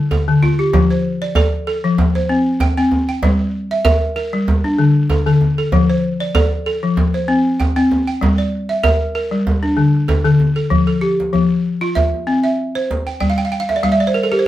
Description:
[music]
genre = west african traditional, West African string and xylophone music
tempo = 96 BPM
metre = 4/4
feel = swing 54% on 16ths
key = F major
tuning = A4 = 440 Hz
[part]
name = balafon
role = arpeggios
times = 0.0-14.5 s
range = D3 to G5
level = -15 LUFS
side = left 1 dB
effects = none
[part]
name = djembe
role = percussion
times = 0.1-14.1 s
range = none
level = -18 LUFS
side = right 1 dB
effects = none
[sound]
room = wet studio reverb, RT60 0.6 s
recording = heard from further back in the room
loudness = -14 LUFS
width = side -14 dB against mid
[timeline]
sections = 0.7-10.7 A section; 10.7-14.5 B section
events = balafon fill 13.2-14.5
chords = 0.0 Dm; 0.7 F; 2.0 C5; 3.2 Gm; 4.5 D5; 5.7 F; 7.0 C5; 8.2 Gm; 9.5 D5; 10.7 F; 12.0 C; 13.2 N.C.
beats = 0.11 | 0.73 1.36 1.98 2.61 | 3.23 3.86 4.48 5.10 | 5.73 6.35 6.97 7.60 | 8.22 8.84 9.47 10.09 | 10.71 11.34 11.96 12.59 | 13.21 13.84 14.46

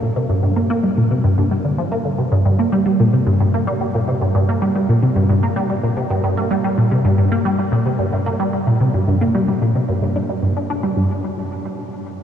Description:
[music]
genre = ambient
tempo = 111 BPM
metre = 4/4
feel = straight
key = G minor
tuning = A4 = 440 Hz
[part]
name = resonant blip pluck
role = solo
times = 0.0-11.2 s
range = G2 to D4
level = -16 LUFS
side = equal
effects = phaser, ensemble chorus, ping-pong delay
[sound]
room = wet huge ambient reverb, RT60 7.4 s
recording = worn, warbling old tape, cassette tape, warbly pitch drift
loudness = -15 LUFS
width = side -9 dB against mid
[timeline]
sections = 0.0-11.0 A section; 11.0-12.2 B section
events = none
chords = none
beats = | 0.16 0.70 1.24 1.78 | 2.32 2.86 3.40 3.94 | 4.48 5.02 5.56 6.10 | 6.64 7.18 7.73 8.27 | 8.81 9.35 9.89 10.43 | 10.97

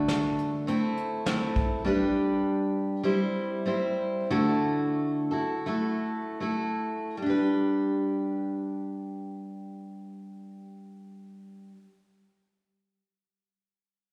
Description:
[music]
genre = acoustic folk duo or small band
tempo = 73-102 BPM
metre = 4/4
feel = straight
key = G major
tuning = A4 = 440 Hz
[part]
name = picked steel-string acoustic guitar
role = accompaniment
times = 0.0-11.8 s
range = D3 to C5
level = -29 LUFS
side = equal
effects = slapback echo
[part]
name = soft brush drum kit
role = drums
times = 0.1-1.7 s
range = hi-hat, kick drum, snare drum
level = -33 LUFS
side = equal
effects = none
[sound]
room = moderate plate reverb, RT60 2.8 s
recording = live gig heard through the venue's PA, recital hall reverb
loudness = -28 LUFS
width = mono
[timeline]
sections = 0.0-7.2 A section; 7.2-10.5 B section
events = slowing down 1.9-7.2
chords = 0.0 D; 0.7 Am; 1.9 G; 3.0 C; 4.3 Dadd9; 7.2 G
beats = 0.08 0.67 1.26 | 1.85 2.44 3.05 3.67 | 4.30 4.97 5.67 6.41 | 7.21 8.03 8.86 9.68

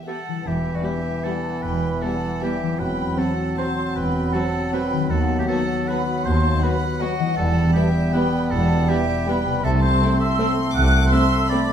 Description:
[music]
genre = classical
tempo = 157 BPM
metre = 3/4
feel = uneven beats, rubato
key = E minor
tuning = A4 = 440 Hz
[part]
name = rich studio violin section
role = melody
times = 0.0-11.6 s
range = E4 to F#4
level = -41 LUFS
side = left 1 dB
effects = none
[part]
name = warm chamber violin section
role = second line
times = 0.0-11.7 s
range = D5 to D6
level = -32 LUFS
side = left 4 dB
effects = none
[part]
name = concert harp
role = arpeggios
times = 0.0-11.7 s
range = C3 to B4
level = -30 LUFS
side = left 8 dB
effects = none
[part]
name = clear oboe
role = second line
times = 0.1-11.7 s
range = F#4 to F#5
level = -30 LUFS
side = right 2 dB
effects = none
[part]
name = mellow flute section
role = second line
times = 0.1-11.7 s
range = F#5 to F#6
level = -28 LUFS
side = equal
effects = none
[part]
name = rich chamber viola section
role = accompaniment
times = 0.1-11.6 s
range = F#3 to G4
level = -30 LUFS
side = right 1 dB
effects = none
[part]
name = clear clarinet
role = second line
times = 0.5-11.7 s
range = B3 to C4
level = -28 LUFS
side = equal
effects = none
[part]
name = warm bassoon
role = accompaniment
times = 0.5-11.7 s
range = E3 to A3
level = -29 LUFS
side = right 3 dB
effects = none
[part]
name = rich symphonic double bass section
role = bass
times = 0.5-11.1 s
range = E1 to D#2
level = -24 LUFS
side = right 1 dB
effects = none
[part]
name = warm chamber cello section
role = bass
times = 0.5-11.1 s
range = D#2 to C3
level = -26 LUFS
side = right 1 dB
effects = none
[part]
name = mellow French horn section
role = sustained chords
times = 0.9-11.6 s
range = F#3 to C4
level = -30 LUFS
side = equal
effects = none
[sound]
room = wet stone room reverb, RT60 1.1 s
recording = none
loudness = -18 LUFS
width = side -8 dB against mid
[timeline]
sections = 0.5-11.7 A section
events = none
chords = 0.5 Em; 2.8 F#m7b5/E; 5.1 B7/D#; 7.4 Em; 9.6 Am/C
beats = 0.07 | 0.46 0.85 1.25 | 1.64 2.02 2.42 | 2.80 3.18 3.58 | 3.95 4.33 4.73 | 5.10 5.49 5.88 | 6.26 6.63 7.02 | 7.38 7.75 8.14 | 8.51 8.89 9.28 | 9.65 10.01 10.40 | 10.76 11.12 11.51

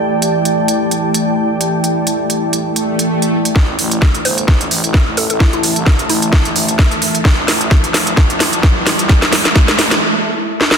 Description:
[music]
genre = bass house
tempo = 130 BPM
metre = 4/4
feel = swing 55% on 16ths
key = unclear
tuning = A4 = 440 Hz
[part]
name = dark analog pad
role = sustained chords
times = 0.0-10.0 s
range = E3 to A5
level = -21 LUFS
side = equal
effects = chorus, sidechain pumping
[part]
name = ethereal airy pad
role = texture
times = 0.0-10.0 s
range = A3 to A5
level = -20 LUFS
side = equal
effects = ensemble chorus, built-in reverb, sidechain pumping
[part]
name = garage drum kit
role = drums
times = 0.2-10.8 s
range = hi-hat, snare drum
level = -15 LUFS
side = right 1 dB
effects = none
[part]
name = swell and riser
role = sound effects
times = 2.8-10.0 s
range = none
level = -23 LUFS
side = equal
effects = none
[part]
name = growling FM bass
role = bass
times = 3.6-10.0 s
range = G1 to C2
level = -26 LUFS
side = equal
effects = overdrive, sidechain pumping, high-pass filter
[part]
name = electronic kick drum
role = drums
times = 3.6-9.7 s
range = none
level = -13 LUFS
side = equal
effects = none
[part]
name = mallet-like synth pluck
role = melody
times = 4.3-6.5 s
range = E4 to C5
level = -22 LUFS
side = left 1 dB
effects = chorus, ping-pong delay
[sound]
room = moderate lush hall reverb, RT60 2.0 s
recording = dense, heavily limited modern master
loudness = -11 LUFS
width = side -6 dB against mid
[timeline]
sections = 0.0-3.6 A section; 3.6-10.8 B section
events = filter sweep on analog synth pad 0.0-3.6; swell 2.8-3.6; build-up 3.6-10.8; drum fill 3.6-10.0, 10.6; riser 6.1-10.0; break 10.0-10.8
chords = 0.0 A5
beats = 0.33 0.79 1.25 | 1.71 2.17 2.63 3.10 | 3.56 4.02 4.48 4.94 | 5.40 5.87 6.33 6.79 | 7.25 7.71 8.17 8.63 | 9.10 9.56 10.02 10.48

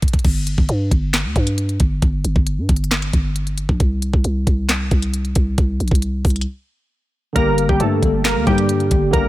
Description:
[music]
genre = hip hop, trap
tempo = 135 BPM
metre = 4/4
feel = half-time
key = G minor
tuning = A4 = 440 Hz
[part]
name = trap drum kit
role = drums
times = 0.0-9.2 s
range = crash cymbal, handclaps, hi-hat, kick drum, snare drum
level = -18 LUFS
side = equal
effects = none
[part]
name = growling 808-style bass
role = bass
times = 0.2-9.3 s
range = G1 to G2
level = -20 LUFS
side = equal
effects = none
[part]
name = tine electric piano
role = accompaniment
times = 7.3-9.3 s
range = D3 to A4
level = -21 LUFS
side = left 1 dB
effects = medium stereo tremolo, low-pass filter
[part]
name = glassy digital keys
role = melody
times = 7.4-9.3 s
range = G3 to Bb4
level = -18 LUFS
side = equal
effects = chorus, low-pass filter
[sound]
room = little or no reverb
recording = none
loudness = -16 LUFS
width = side -16 dB against mid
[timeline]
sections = 0.0-9.3 A section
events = break 0.0-2.0, 6.5-7.4; drum fill 0.0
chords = 0.2 N.C.; 7.4 Gm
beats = | 0.25 0.69 1.14 1.58 | 2.02 2.47 2.91 3.36 | 3.80 4.25 4.69 5.13 | 5.58 6.02 6.47 6.91 | 7.36 7.80 8.25 8.69 | 9.13

